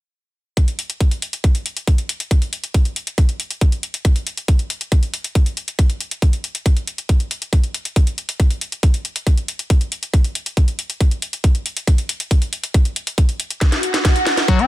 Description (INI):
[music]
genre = psychedelic trance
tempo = 138 BPM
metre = 4/4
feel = straight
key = unclear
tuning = A4 = 439 Hz
[part]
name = drum and bass drum kit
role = drums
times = 0.6-14.7 s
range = hi-hat, snare drum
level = -24 LUFS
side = left 1 dB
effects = low-pass filter on hats, low-pass filter on snare, low-pass filter on room
[part]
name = electronic kick drum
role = drums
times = 0.6-14.6 s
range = none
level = -14 LUFS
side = equal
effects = none
[part]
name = swell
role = sound effects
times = 13.8-14.5 s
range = none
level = -21 LUFS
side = right 1 dB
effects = none
[part]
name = overdriven acid bass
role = riff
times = 14.5-14.7 s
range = F#3 to C#4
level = -15 LUFS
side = left 6 dB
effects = distortion, auto-pan, sidechain pumping
[sound]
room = little or no reverb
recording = dense, heavily limited modern master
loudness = -16 LUFS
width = side -17 dB against mid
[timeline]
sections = 0.6-14.7 A section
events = drum fill 13.6-14.5; swell 13.8-14.5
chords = none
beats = | 0.57 1.00 1.44 1.88 | 2.31 2.74 3.18 3.61 | 4.05 4.48 4.92 5.35 | 5.79 6.22 6.66 7.09 | 7.53 7.96 8.40 8.83 | 9.27 9.70 10.13 10.57 | 11.01 11.44 11.88 12.31 | 12.74 13.18 13.61 14.05 | 14.48